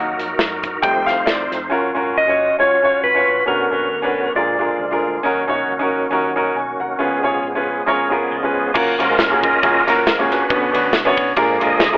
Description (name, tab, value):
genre	uptempo gospel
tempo	136 BPM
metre	4/4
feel	swing 55% on 8ths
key	F# major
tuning	A4 = 440 Hz
part	clear grand piano	accompaniment	0.0-12.0 s	A#2 to G#5	-18 LUFS	equal	none
part	bright tonewheel organ	sustained chords	0.0-12.0 s	D3 to D#5	-21 LUFS	equal	fast rotary speaker, chorus vibrato
part	hollow-body short-scale fingered electric bass	bass	0.0-12.0 s	F#1 to F#2	-40 LUFS	equal	none
part	modern studio drum kit	drums	0.2-1.6, 8.8-11.9 s	crash cymbal, hi-hat, kick drum, ride cymbal, snare drum	-20 LUFS	equal	none
part	clean lap steel guitar	melody	2.2-5.0 s	A#4 to D#5	-16 LUFS	equal	none
part	clean electric guitar	second line	7.9-8.7 s	G#3 to A#4	-25 LUFS	right 2 dB	spring reverb
room	light reverb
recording	telephone sound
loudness	-15 LUFS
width	side -22 dB against mid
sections	0.0-1.7 A section; 1.7-8.8 B section; 8.8-12.0 C section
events	grand piano solo 0.0-1.7; tonewheel organ solo 8.8-12.0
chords	0.0 D#m; 0.8 F7; 1.7 F#maj7; 3.5 Bmadd9; 4.4 A#7; 5.2 D#m7; 7.0 C#7; 8.8 F#maj7; 10.5 Bmadd9; 11.4 A#7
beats	0.39 0.83 1.27 | 1.71 2.15 2.59 3.03 | 3.47 3.91 4.36 4.80 | 5.24 5.68 6.12 6.56 | 7.00 7.44 7.88 8.31 | 8.75 9.19 9.63 10.06 | 10.50 10.94 11.37 11.81